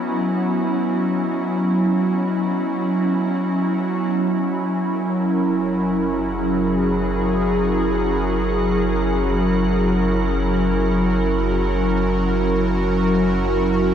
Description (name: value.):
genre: ambient.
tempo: free time.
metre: none.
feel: none.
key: F# mixolydian.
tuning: A4 = 436 Hz.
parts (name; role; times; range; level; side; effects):
airy breathy pad; sustained chords; 0.0-13.9 s; F#3 to A#4; -19 LUFS; right 1 dB; chorus.
vibraphone with medium mallets; arpeggios; 0.0-4.7 s; B4 to E5; -45 LUFS; right 1 dB; none.
organ-like drone; drone; 0.0-13.9 s; F#3 to F#4; -25 LUFS; left 1 dB; ensemble chorus, built-in reverb.
deep rumbling drone; bass; 5.8-13.9 s; F#1; -25 LUFS; equal; built-in reverb.
room: wet huge ambient reverb, RT60 7.7 s.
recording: dark, warm production.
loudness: -18 LUFS.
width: side -8 dB against mid.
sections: 0.0-4.2 A section; 4.2-13.9 B section.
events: none.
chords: 0.0 C#m7/F#; 4.2 F#9.